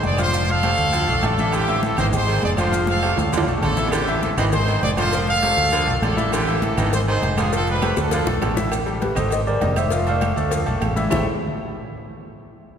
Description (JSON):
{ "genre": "latin, salsa", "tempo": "200 BPM", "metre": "4/4", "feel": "straight", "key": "A minor", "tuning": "A4 = 441 Hz", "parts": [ { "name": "bright trumpet section", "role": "melody", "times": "0.0-8.6 s", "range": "C4 to F5", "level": "-23 LUFS", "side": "right 1 dB", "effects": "none" }, { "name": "growling baritone saxophone", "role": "second line", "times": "0.0-8.6 s", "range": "C3 to E3", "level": "-29 LUFS", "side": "right 4 dB", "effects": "none" }, { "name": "bright grand piano", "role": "accompaniment", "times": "0.0-11.3 s", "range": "D#3 to F5", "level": "-26 LUFS", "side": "left 2 dB", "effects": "none" }, { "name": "fingered electric bass", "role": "bass", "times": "0.0-11.3 s", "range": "F1 to D2", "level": "-24 LUFS", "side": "equal", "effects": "none" }, { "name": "agogo bells and timbales", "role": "percussion", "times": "0.0-11.2 s", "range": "none", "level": "-29 LUFS", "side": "right 5 dB", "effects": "none" }, { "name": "congas", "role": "percussion", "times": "0.0-11.2 s", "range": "none", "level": "-28 LUFS", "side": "left 1 dB", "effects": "none" }, { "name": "maracas", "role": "percussion", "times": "0.0-11.2 s", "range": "none", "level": "-39 LUFS", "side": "left 6 dB", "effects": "none" }, { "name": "claves", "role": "percussion", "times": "0.2-11.2 s", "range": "none", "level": "-40 LUFS", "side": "right 4 dB", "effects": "none" }, { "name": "cowbell and bongos", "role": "percussion", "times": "3.9-11.2 s", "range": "none", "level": "-30 LUFS", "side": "left 3 dB", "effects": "none" }, { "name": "tine electric piano", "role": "melody", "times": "9.0-10.5 s", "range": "G4 to F5", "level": "-26 LUFS", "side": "equal", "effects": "medium stereo tremolo" } ], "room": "wet church reverb, RT60 3.4 s", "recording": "recorded in a church or concert hall", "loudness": "-18 LUFS", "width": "side -8 dB against mid", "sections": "0.0-8.7 A section; 8.7-11.1 B section; 11.1-12.3 C section", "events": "drum fill 2.7-3.9, 8.0-8.7", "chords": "0.3 F; 0.9 Dm; 1.5 Am7; 2.1 G#; 2.7 F; 3.3 Dm; 3.9 Am7; 4.5 G#; 5.1 F; 5.7 Dm; 6.3 Am7; 6.9 G#; 7.5 F; 8.1 Dm; 8.7 Am9b5; 9.3 G#; 9.9 F; 10.5 Dm; 11.1 Am7", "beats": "0.03 | 0.33 0.63 0.93 1.23 | 1.53 1.83 2.13 2.43 | 2.73 3.03 3.33 3.62 | 3.92 4.22 4.52 4.82 | 5.12 5.42 5.72 6.02 | 6.32 6.62 6.92 7.22 | 7.52 7.82 8.12 8.42 | 8.72 9.02 9.32 9.62 | 9.92 10.22 10.52 10.82 | 11.12" }